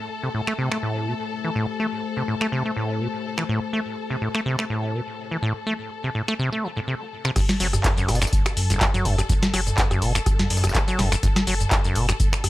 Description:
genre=acid house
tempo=124 BPM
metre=4/4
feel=swing 54% on 16ths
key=unclear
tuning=A4 = 440 Hz
part: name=warm studio string section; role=sustained chords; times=0.0-12.5 s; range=A4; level=-33 LUFS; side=left 4 dB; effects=sidechain pumping
part: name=warbly tape-like pad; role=texture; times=0.0-7.4 s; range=A3 to E5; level=-33 LUFS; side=left 6 dB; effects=chorus, built-in reverb, sidechain pumping
part: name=acid bass, saw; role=riff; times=0.2-12.1 s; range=F#1 to A3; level=-25 LUFS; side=equal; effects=tube saturation, cassette tape, digital delay
part: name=booming analog drum machine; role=drums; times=0.5-12.5 s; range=cabasa, crash cymbal, finger snaps, handclaps, hi-hat, rim click, snare drum, toms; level=-24 LUFS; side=equal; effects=small room ambience
part: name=breakbeat sampler-style drum kit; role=drums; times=7.4-12.5 s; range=hi-hat, snare drum, tambourine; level=-35 LUFS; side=equal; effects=high-pass filter on perc, small room ambience, high-pass filter on snare, high-pass filter on hats, high-pass filter on room
part: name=electronic kick drum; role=drums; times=7.4-12.3 s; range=none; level=-23 LUFS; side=equal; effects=small room ambience
part: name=warm sub bass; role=bass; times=7.6-12.5 s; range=F#1 to F#2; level=-25 LUFS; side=equal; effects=sidechain pumping
room=light reverb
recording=none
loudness=-21 LUFS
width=side -17 dB against mid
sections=0.0-7.4 A section; 7.4-12.5 B section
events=drop 7.4-12.5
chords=0.0 Am7; 7.4 F#m

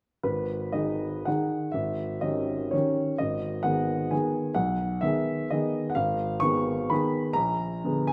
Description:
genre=classical, romantic triple-time dance for piano with dotted rhythms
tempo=110-137 BPM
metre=3/4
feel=rubato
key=G# minor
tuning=A4 = 438 Hz
part: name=warm baby grand piano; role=solo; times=0.2-8.1 s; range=G#1 to Db6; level=-28 LUFS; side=equal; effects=none
room=moderate concert hall reverb, RT60 1.8 s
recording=none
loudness=-28 LUFS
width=mono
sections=0.2-8.1 A section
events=none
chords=0.2 G#m; 1.7 D#7b9/G#; 3.2 G#m; 4.6 G#m/B; 6.0 Fm7b5/Ab; 7.4 Bb7b9

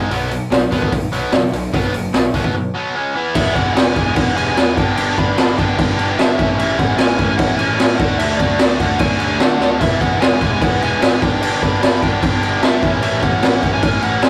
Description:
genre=punk rock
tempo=149 BPM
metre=4/4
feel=straight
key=unclear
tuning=A4 = 440 Hz
part: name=cranked stack guitar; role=riff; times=0.0-14.3 s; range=G2 to F#4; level=-24 LUFS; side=equal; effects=overdrive
part: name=distorted electric guitar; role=riff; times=0.0-14.3 s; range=G2 to F#4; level=-26 LUFS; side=equal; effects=overdrive
part: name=fuzz picked electric bass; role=bass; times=0.0-14.3 s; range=E1 to D3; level=-27 LUFS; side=equal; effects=overdrive
part: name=raw garage drum kit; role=drums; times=0.1-14.3 s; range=crash cymbal, hi-hat, kick drum, snare drum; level=-18 LUFS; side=equal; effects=none
part: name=smooth overdriven lead guitar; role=melody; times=3.3-14.3 s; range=D5 to B5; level=-25 LUFS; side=equal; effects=none
room=light reverb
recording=rough rehearsal-room recording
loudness=-16 LUFS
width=mono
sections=0.0-3.4 A section; 3.4-14.3 B section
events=break 2.5-3.4; drum fill 9.6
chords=0.1 B5; 2.9 C#5; 3.2 E5; 3.4 E; 4.8 G; 6.4 A; 8.0 D; 9.8 E; 11.2 G; 12.8 A

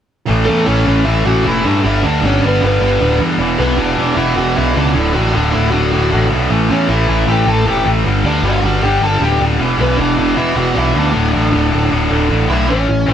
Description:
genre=punk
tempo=155 BPM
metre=4/4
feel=straight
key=D major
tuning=A4 = 444 Hz
part: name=tight distorted guitar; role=riff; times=0.3-13.1 s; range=D2 to A3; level=-19 LUFS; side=left 6 dB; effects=distortion
part: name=tight distorted guitar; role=riff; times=0.3-12.7 s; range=D2 to A3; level=-17 LUFS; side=right 4 dB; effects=distortion
part: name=growling picked electric bass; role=bass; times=0.3-13.1 s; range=D1 to G2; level=-16 LUFS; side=equal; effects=overdrive
part: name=lead guitar through a small cranked amp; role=melody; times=0.5-13.1 s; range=A3 to A5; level=-18 LUFS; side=left 1 dB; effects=overdrive
room=light reverb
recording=band playing live in one room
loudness=-12 LUFS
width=side -9 dB against mid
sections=0.3-12.7 A section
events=none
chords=0.3 A; 1.8 G; 3.4 E5; 4.9 D; 6.5 A; 8.0 G5; 9.6 E5; 11.1 D5

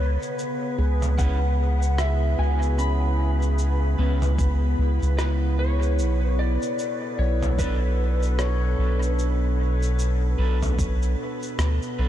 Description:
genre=ambient dub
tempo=75 BPM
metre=4/4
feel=swing 59% on 16ths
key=B dorian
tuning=A4 = 440 Hz
part: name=electric slide guitar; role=melody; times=0.0-11.5 s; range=B4 to B5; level=-32 LUFS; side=left 1 dB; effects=wide subtle chorus, dub echo
part: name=warbly tape-like pad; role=sustained chords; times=0.0-12.1 s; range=B2 to B4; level=-30 LUFS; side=right 1 dB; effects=chorus, built-in reverb
part: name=soft dub sub bass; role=bass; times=0.0-12.1 s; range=B1 to D2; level=-22 LUFS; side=equal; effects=none
part: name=wind-like tuned noise texture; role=texture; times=0.0-12.1 s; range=B4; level=-37 LUFS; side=left 2 dB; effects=built-in reverb
part: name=lo-fi sampler-style drum kit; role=drums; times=0.2-12.0 s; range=cabasa, rim click, toms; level=-35 LUFS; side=right 1 dB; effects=dub echo
part: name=handpan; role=arpeggios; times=0.8-11.9 s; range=B3 to C#5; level=-37 LUFS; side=left 2 dB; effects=dub echo
part: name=electric guitar at the edge of break-up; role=stabs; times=1.2-12.1 s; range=C#4 to B4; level=-40 LUFS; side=right 3 dB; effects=dub echo
part: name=electronic kick drum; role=drums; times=1.2-11.0 s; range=none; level=-26 LUFS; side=equal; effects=none
room=light reverb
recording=none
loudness=-21 LUFS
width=side -12 dB against mid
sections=0.0-12.1 A section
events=none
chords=0.0 C#m7; 6.0 Bm7

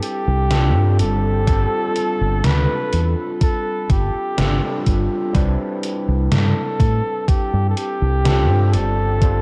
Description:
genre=vaporwave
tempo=62 BPM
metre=4/4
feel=straight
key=C major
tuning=A4 = 440 Hz
part: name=breathy flugelhorn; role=melody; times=0.0-9.4 s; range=G4 to B4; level=-26 LUFS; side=equal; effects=tape echo
part: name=overdriven tine electric piano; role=accompaniment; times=0.0-9.4 s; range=G3 to B4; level=-27 LUFS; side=equal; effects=lush chorus, diffuse ambient delay
part: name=gated 80s digital drum machine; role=drums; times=0.0-9.4 s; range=hi-hat, snare drum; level=-25 LUFS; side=equal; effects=gated reverb, gated reverb snare, overdrive
part: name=fingered electric bass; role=bass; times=0.3-9.4 s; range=G1 to A2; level=-20 LUFS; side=equal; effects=none
part: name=electronic kick drum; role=drums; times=1.5-9.4 s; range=none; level=-20 LUFS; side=equal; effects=overdrive
room=moderate plate reverb, RT60 3.6 s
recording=dreamy mix soaked in reverb, cassette tape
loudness=-19 LUFS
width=mono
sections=0.0-9.4 A section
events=none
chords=0.0 Cmaj9; 1.0 G9sus4; 5.3 Cmaj9; 8.7 G9sus4

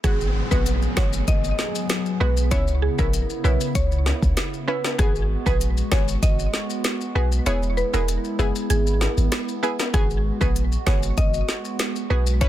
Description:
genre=dancehall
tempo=97 BPM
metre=4/4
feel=straight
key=G# minor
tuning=A4 = 440 Hz
part: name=mallet-like synth pluck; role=melody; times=0.0-12.5 s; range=G#4 to D#5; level=-28 LUFS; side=equal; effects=chorus, digital delay
part: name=analog pluck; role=accompaniment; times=0.0-12.5 s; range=G#3 to B4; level=-30 LUFS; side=right 2 dB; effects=chorus
part: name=hollow soft pad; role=sustained chords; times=0.0-12.5 s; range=C#3 to G#4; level=-30 LUFS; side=right 1 dB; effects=chorus, sidechain pumping
part: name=warm 808-style bass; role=bass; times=0.0-12.5 s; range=E1 to C#2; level=-22 LUFS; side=equal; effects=none
part: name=afro-pop drum kit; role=drums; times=0.0-12.5 s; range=hi-hat, kick drum, rim click, snare drum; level=-23 LUFS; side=equal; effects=soft clipping on snare
part: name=maracas and timbales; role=percussion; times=0.0-12.5 s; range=none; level=-34 LUFS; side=left 9 dB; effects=none
part: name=downlifter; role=sound effects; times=0.0-5.0 s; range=none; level=-33 LUFS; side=equal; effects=none
room=little or no reverb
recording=dense, heavily limited modern master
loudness=-20 LUFS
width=side -13 dB against mid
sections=0.0-12.5 A section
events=kick muted 7.5-9.9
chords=0.0 G#m7; 2.5 C#m7; 5.0 G#m7; 7.5 E; 9.9 G#m7

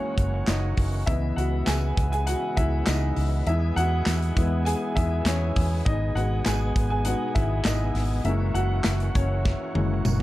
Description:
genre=piano-driven pop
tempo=100 BPM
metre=4/4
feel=straight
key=unclear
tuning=A4 = 440 Hz
part: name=warm upright piano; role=accompaniment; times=0.0-10.2 s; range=E3 to G#5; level=-28 LUFS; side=left 2 dB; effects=none
part: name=overdriven tonewheel organ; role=sustained chords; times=0.0-10.2 s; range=B2 to G#4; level=-34 LUFS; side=right 1 dB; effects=chorus vibrato, lush chorus
part: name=vintage muted fingered electric bass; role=bass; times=0.2-10.2 s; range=F#1 to E2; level=-25 LUFS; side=equal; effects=none
part: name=modern studio drum kit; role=drums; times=0.2-10.2 s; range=handclaps, hi-hat, kick drum, snare drum, toms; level=-27 LUFS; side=equal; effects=none
part: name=tambourine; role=percussion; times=0.5-10.2 s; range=none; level=-41 LUFS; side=right 8 dB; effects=none
room=light reverb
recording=dark, warm production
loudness=-22 LUFS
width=side -16 dB against mid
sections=0.0-10.2 A section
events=upright piano solo 0.0-10.2; drum fill 9.5-10.2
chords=0.0 F#7; 1.1 C#m7; 3.5 E; 5.9 G#m; 8.3 F#7

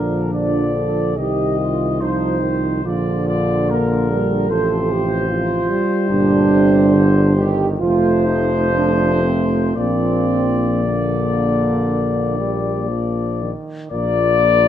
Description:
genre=classical, hymn-like piece for brass band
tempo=56-76 BPM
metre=4/4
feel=rubato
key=Bb major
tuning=A4 = 439 Hz
part: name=dark trumpet section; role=melody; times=0.0-14.7 s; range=Bb4 to Eb5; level=-22 LUFS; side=left 5 dB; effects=none
part: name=mellow French horn section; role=second line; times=0.0-14.7 s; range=Bb3 to Bb4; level=-21 LUFS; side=right 6 dB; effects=none
part: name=clear trombone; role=accompaniment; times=0.0-14.7 s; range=Bb2 to Bb3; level=-25 LUFS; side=right 2 dB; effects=none
part: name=mellow euphonium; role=accompaniment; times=0.0-14.7 s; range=Eb3 to F4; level=-22 LUFS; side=left 3 dB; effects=none
part: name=mellow tuba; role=bass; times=0.0-14.7 s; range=F1 to C2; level=-21 LUFS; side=equal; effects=none
room=moderate recital hall reverb, RT60 1.3 s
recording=close, detailed microphones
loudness=-15 LUFS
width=side -10 dB against mid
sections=0.0-13.9 A section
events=none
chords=0.0 Bb; 1.2 F5/C; 2.9 Bb; 4.5 F/A; 6.1 Gm; 7.8 F; 9.8 Bb

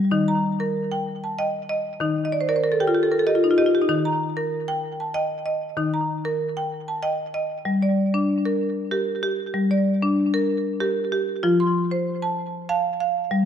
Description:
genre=world meditative, meditative tuned percussion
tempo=95 BPM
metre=3/4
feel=swing 53% on 16ths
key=unclear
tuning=A4 = 438 Hz
part: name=marimba with hard mallets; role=solo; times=0.0-13.5 s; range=Eb3 to C6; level=-20 LUFS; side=equal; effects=tape echo
room=wet echo chamber reverb, RT60 1.5 s, small room reverb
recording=none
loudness=-21 LUFS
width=side -8 dB against mid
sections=0.1-13.5 A section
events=marimba fill 2.2-3.9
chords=0.1 Eb; 7.7 Gm; 11.4 F

